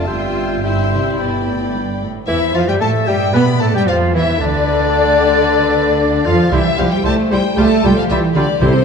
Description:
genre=quick classical-period movement for symphony orchestra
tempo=113 BPM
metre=4/4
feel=straight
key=C major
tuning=A4 = 440 Hz
part: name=warm chamber violin section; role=melody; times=0.0-8.8 s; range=C5 to C6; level=-21 LUFS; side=left 6 dB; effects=none
part: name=dark chamber violin section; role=second line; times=0.0-8.8 s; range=G4 to G5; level=-25 LUFS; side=left 4 dB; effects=none
part: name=hollow flute section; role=second line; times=0.0-8.7 s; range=D5 to C6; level=-25 LUFS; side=left 1 dB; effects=none
part: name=warm clarinet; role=second line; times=0.0-8.7 s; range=D4 to E5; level=-24 LUFS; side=left 4 dB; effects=none
part: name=warm oboe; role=second line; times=0.0-8.7 s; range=D4 to G5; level=-26 LUFS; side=right 1 dB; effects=none
part: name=mellow bassoon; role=accompaniment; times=0.0-8.7 s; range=D3 to B3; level=-23 LUFS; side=equal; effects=none
part: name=rich chamber viola section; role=accompaniment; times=0.0-8.7 s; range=D3 to F4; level=-23 LUFS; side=right 1 dB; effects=none
part: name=mellow French horn section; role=sustained chords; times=0.0-8.8 s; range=C3 to G4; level=-22 LUFS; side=left 5 dB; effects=none
part: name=rich chamber double bass section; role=bass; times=0.0-8.7 s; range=G1 to B2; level=-21 LUFS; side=right 3 dB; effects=none
part: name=rich studio cello section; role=bass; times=0.0-8.8 s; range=G2 to B3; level=-20 LUFS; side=right 3 dB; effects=none
part: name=timpani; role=percussion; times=8.6-8.8 s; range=C3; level=-14 LUFS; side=equal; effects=none
room=wet concert hall reverb, RT60 1.9 s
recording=dark, warm production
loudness=-13 LUFS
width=side -6 dB against mid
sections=0.0-2.3 A section; 2.3-8.8 B section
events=none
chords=0.1 C/G; 1.2 G; 2.3 C/E; 3.3 F; 4.4 Dm6; 6.5 C; 7.6 G7(no3)/C

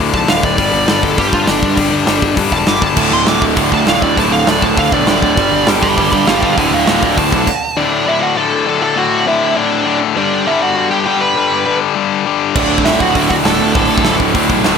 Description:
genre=punk rock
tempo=200 BPM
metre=4/4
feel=straight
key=D major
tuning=A4 = 439 Hz
part: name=tight distorted guitar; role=riff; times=0.0-14.8 s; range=D2 to G3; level=-15 LUFS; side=left 11 dB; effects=distortion
part: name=fuzz picked electric bass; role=bass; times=0.0-7.5, 12.6-14.8 s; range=D1 to G2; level=-21 LUFS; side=equal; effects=overdrive
part: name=smooth overdriven lead guitar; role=melody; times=0.1-14.2 s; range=D4 to D6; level=-16 LUFS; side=right 4 dB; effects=none
part: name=big rock drum kit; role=drums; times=0.1-7.5, 12.6-14.7 s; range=crash cymbal, hi-hat, kick drum, snare drum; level=-16 LUFS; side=right 1 dB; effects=none
part: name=biting overdriven guitar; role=riff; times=3.0-7.5, 12.6-14.8 s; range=D2 to G3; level=-16 LUFS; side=right 21 dB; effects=none
room=little or no reverb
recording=none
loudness=-11 LUFS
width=side -6 dB against mid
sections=0.0-7.8 A section; 7.8-14.8 B section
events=lead electric guitar solo 0.0-7.8; stop 7.5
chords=0.0 D5; 0.6 G5; 3.0 D5; 5.4 G; 6.6 D5; 7.8 D; 10.2 G; 12.6 D

